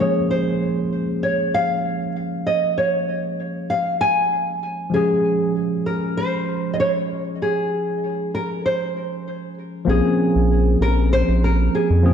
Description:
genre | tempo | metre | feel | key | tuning
sunset chillout | 97 BPM | 4/4 | swing 55% on 16ths | Bb minor | A4 = 439 Hz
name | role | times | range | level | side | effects
nylon-string guitar | melody | 0.0-12.1 s | Ab4 to Ab5 | -22 LUFS | equal | tape echo
tine electric piano | accompaniment | 0.0-12.1 s | F3 to Ab4 | -23 LUFS | moving between left 4 dB and right 6 dB | overdrive, auto-pan
round analog bass | bass | 9.9-12.1 s | Bb1 to F2 | -17 LUFS | equal | none
room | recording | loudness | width
moderate lush hall reverb, RT60 2.2 s | dark, warm production | -18 LUFS | side -8 dB against mid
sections
0.0-9.9 A section; 9.9-12.1 B section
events
none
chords
0.0 Bbm7; 4.9 Dbmaj7; 9.9 Bbm9

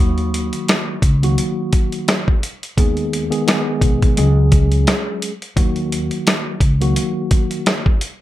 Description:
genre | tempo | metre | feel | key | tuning
hip hop, boom-bap hip-hop | 86 BPM | 4/4 | swing 57% on 16ths | Eb minor | A4 = 440 Hz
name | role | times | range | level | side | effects
mellow tine electric piano | accompaniment | 0.0-7.9 s | Eb3 to Ab4 | -21 LUFS | equal | fast stereo tremolo, cassette tape, high-pass filter, low-pass filter
upright bass | bass | 0.0-6.9 s | Cb2 to Eb2 | -17 LUFS | equal | none
dusty soul sampler-style drum kit | drums | 0.2-8.2 s | hi-hat, kick drum, rim click, snare drum | -16 LUFS | equal | none
room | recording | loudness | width
moderate small room reverb, RT60 0.5 s | none | -15 LUFS | side -14 dB against mid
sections
0.0-8.2 A section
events
none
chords
0.0 Ebm; 2.8 Abm/Eb; 4.2 Dbsus4; 5.6 Ebm

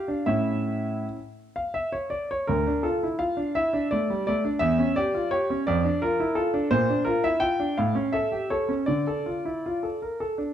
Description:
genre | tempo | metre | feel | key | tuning
classical-period piano sonatina | 56 BPM (dotted quarters) | 6/8 | uneven beats, rubato | D minor | A4 = 437 Hz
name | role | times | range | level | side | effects
warm concert grand piano | solo | 0.0-10.5 s | D2 to G5 | -23 LUFS | equal | none
room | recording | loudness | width
light reverb | close, detailed microphones | -23 LUFS | side -10 dB against mid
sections
0.0-10.5 A section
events
none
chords
0.3 A; 2.5 Dm; 4.6 Em6; 5.7 Dm/F; 6.7 Bb; 7.8 A7; 8.9 Dm

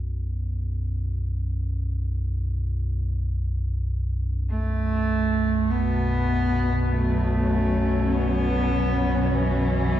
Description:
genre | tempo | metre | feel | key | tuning
dark ambient drone | 50 BPM | 4/4 | straight | unclear | A4 = 439 Hz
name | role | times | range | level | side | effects
deep rumbling drone | drone | 0.0-10.0 s | B1 to F#2 | -25 LUFS | equal | built-in reverb, lush chorus
warm cello | melody | 4.5-10.0 s | E3 to B3 | -25 LUFS | right 1 dB | shimmer reverb, diffuse ambient delay
warm chamber cello section | sustained chords | 5.7-10.0 s | B2 to C#4 | -26 LUFS | equal | none
room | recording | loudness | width
wet cathedral reverb, RT60 5.5 s | dark, warm production | -22 LUFS | side -11 dB against mid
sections
0.0-10.0 A section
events
none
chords
0.0 Bsus2

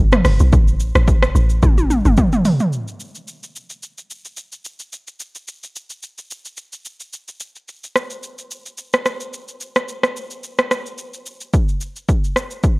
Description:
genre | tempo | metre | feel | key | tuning
amapiano | 109 BPM | 4/4 | swing 55% on 16ths | unclear | A4 = 443 Hz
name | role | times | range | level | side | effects
deep log drum bass | bass | 0.0-2.2 s | G1 to B1 | -14 LUFS | equal | none
deep house drum kit | drums | 0.1-12.8 s | hi-hat, kick drum, rim click, shaker, toms | -18 LUFS | equal | overdrive
room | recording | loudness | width
digital ambience | worn, warbling old tape, cassette tape, warbly pitch drift | -15 LUFS | side -27 dB against mid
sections
0.0-2.7 A section; 2.7-11.5 B section; 11.5-12.8 C section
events
drop 0.0-2.7; drum fill 1.6-2.7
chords
none

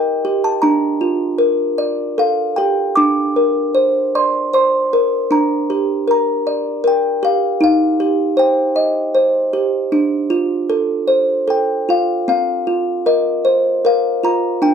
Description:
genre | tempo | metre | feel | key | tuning
children's music, lullaby | 77 BPM | 3/4 | straight | Bb major | A4 = 444 Hz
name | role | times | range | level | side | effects
music box | solo | 0.0-14.7 s | C4 to D6 | -14 LUFS | equal | none
room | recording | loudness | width
light reverb | dry, close 1970s-style studio recording | -14 LUFS | side -7 dB against mid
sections
0.0-12.3 A section; 12.3-14.7 A section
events
none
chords
0.0 Eb; 0.6 Bb; 2.2 Fadd9; 3.0 Bbadd9; 5.3 Gm; 7.6 Cm; 9.9 Dmadd11; 10.7 F; 12.3 Bbsus2

